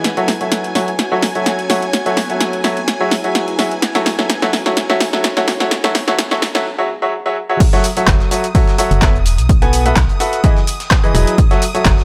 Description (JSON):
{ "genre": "piano house", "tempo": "127 BPM", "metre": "4/4", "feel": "swing 54% on 16ths", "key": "F# dorian", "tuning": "A4 = 440 Hz", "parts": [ { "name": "string machine, violins", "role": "sustained chords", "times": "0.0-12.0 s", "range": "G#5 to D#6", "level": "-30 LUFS", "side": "equal", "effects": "ensemble chorus, vintage 12-bit sampler grit, sidechain pumping" }, { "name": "clear baby grand piano", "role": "riff", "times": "0.0-12.0 s", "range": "E3 to G#5", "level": "-20 LUFS", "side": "equal", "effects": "sidechain pumping, digital delay" }, { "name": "punchy analog drum machine", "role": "drums", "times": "0.0-12.0 s", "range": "crash cymbal, handclaps, hi-hat, shaker, snare drum", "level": "-21 LUFS", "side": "equal", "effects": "none" }, { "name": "airy breathy pad", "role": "texture", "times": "0.0-6.7 s", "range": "B3 to G#5", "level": "-28 LUFS", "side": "equal", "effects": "chorus, sidechain pumping" }, { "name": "breakbeat sampler-style drum kit", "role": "drums", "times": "7.6-12.0 s", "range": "hi-hat, snare drum", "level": "-34 LUFS", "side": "equal", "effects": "none" }, { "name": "electronic kick drum", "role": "drums", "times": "7.6-12.0 s", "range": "none", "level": "-15 LUFS", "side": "equal", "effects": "none" }, { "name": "organ-like FM bass", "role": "bass", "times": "8.1-12.0 s", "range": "E1 to B1", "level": "-17 LUFS", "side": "equal", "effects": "sidechain pumping" } ], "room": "light reverb", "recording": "high-pass filter", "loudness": "-15 LUFS", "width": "mono", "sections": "0.0-7.6 A section; 7.6-12.0 B section", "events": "build-up 0.0-7.6; drum fill 0.0-6.7; break 6.7-7.6; drop 7.6-12.0", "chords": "0.0 F#m7; 2.9 E; 3.8 F#m7; 6.7 E; 7.6 F#m7; 9.3 B7sus4; 10.4 Emaj7; 11.4 F#m7" }